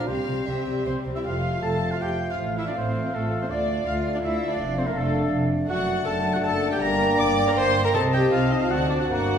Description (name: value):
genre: quick classical-period movement for symphony orchestra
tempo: 150-169 BPM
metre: 3/4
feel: rubato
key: F major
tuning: A4 = 440 Hz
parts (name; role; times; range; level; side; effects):
- warm chamber violin section; melody; 0.0-9.4 s; A4 to D6; -36 LUFS; left 3 dB; none
- warm chamber violin section; second line; 0.0-9.4 s; C4 to D6; -34 LUFS; left 2 dB; none
- warm clarinet; second line; 0.0-9.4 s; C4 to F5; -34 LUFS; left 5 dB; none
- warm oboe; second line; 0.0-9.4 s; A4 to D6; -31 LUFS; equal; none
- warm bassoon; accompaniment; 0.0-9.4 s; G3 to C4; -31 LUFS; right 3 dB; none
- warm chamber viola section; accompaniment; 0.0-9.4 s; G3 to D5; -28 LUFS; right 1 dB; none
- mellow French horn section; sustained chords; 0.0-9.4 s; A3 to G4; -31 LUFS; left 2 dB; none
- warm chamber cello section; bass; 0.1-9.4 s; D2 to D3; -30 LUFS; right 1 dB; none
- warm chamber double bass section; bass; 0.1-9.4 s; F1 to D2; -30 LUFS; right 1 dB; none
- silver concert flute; second line; 1.3-9.4 s; F5 to Bb5; -32 LUFS; equal; none
room: wet recital hall reverb, RT60 1.5 s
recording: recorded in a church or concert hall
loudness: -21 LUFS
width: side -8 dB against mid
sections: 0.0-1.3 A section; 1.3-9.4 B section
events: none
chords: 0.1 C; 1.3 F; 2.4 F/A; 3.5 Dm; 4.6 Dm/F; 5.7 D/F#; 6.8 Gm; 7.9 Adim/C; 8.7 D7